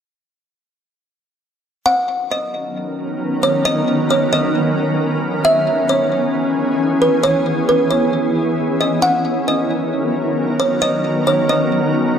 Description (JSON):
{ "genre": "hip hop", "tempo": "134 BPM", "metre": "4/4", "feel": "half-time", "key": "B major", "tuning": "A4 = 436 Hz", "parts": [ { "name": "kalimba", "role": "melody", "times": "1.9-11.7 s", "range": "B4 to F#5", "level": "-18 LUFS", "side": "right 1 dB", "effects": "tape echo" }, { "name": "shimmering ambient pad", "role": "sustained chords", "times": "2.6-12.2 s", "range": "D#3 to A#4", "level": "-17 LUFS", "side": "equal", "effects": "chorus, built-in reverb" } ], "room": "moderate lush hall reverb, RT60 2.5 s", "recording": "dark, warm production, lossy compression artefacts", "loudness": "-15 LUFS", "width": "side -8 dB against mid", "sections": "1.9-12.2 A section", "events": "none", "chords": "1.9 Bmaj9; 5.4 C#m9; 9.0 Bmaj9" }